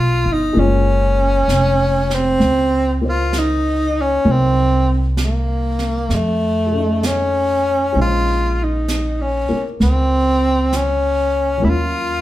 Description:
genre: jazz ballad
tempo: 65 BPM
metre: 4/4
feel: swing 68% on 8ths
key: unclear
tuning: A4 = 440 Hz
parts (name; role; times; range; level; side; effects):
- breathy tenor saxophone; melody; 0.0-12.2 s; A3 to F4; -17 LUFS; equal; none
- dark baby grand piano; accompaniment; 0.0-12.2 s; Db3 to C5; -26 LUFS; left 2 dB; none
- upright bass; bass; 0.0-12.2 s; F1 to F2; -18 LUFS; equal; none
- jazz brush drum kit; drums; 0.6-12.2 s; brushed snare drum, hi-hat, snare drum; -29 LUFS; right 3 dB; none
room: wet studio reverb, RT60 0.8 s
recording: heard from further back in the room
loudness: -14 LUFS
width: side -14 dB against mid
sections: 0.0-12.2 A section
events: none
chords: 0.0 Db9; 0.6 Gbmaj7; 4.2 Cm7b5; 6.1 F7alt; 7.9 Bbm11; 11.6 Ebm9

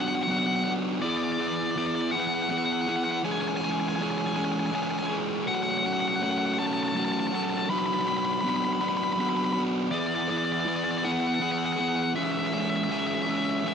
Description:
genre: rock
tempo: 54 BPM (dotted quarters)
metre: 6/8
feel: straight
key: unclear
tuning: A4 = 444 Hz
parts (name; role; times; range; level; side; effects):
- crunchy overdriven guitar; melody; 0.0-13.7 s; D5 to B5; -28 LUFS; left 2 dB; digital delay
- fuzz guitar; riff; 0.0-13.7 s; E3 to G#4; -27 LUFS; right 1 dB; distortion
room: light reverb, digital ambience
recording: none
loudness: -25 LUFS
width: side -7 dB against mid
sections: 0.0-13.7 A section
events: none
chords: 0.0 Bm/F#; 1.0 E5; 3.2 C#m/E; 5.5 F#m; 7.7 Bm/F#; 9.9 E5; 12.1 C#m/E

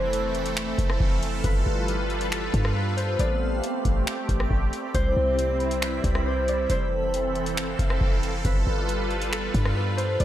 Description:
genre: hip hop, atmospheric cloud-rap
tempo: 137 BPM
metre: 4/4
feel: half-time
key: unclear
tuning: A4 = 440 Hz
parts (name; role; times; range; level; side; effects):
- concert harp; melody; 0.0-10.2 s; A4 to D5; -30 LUFS; equal; low-pass filter, digital delay
- sweeping resonant pad; sustained chords; 0.0-10.2 s; C3 to B4; -29 LUFS; right 1 dB; chorus, sidechain pumping
- warm 808-style bass; bass; 0.0-10.2 s; F1 to G2; -27 LUFS; equal; none
- backwards swelling texture; texture; 0.0-10.2 s; E3 to B5; -35 LUFS; equal; built-in reverb
- booming analog drum machine; drums; 0.1-10.2 s; finger snaps, hi-hat, kick drum, rim click; -26 LUFS; equal; none
room: light reverb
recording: none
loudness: -22 LUFS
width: side -12 dB against mid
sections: 0.0-10.2 A section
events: none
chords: 0.0 Fmaj7; 1.4 G9; 3.2 Am11; 4.9 Cmaj7; 6.7 Fmaj7; 8.4 G9

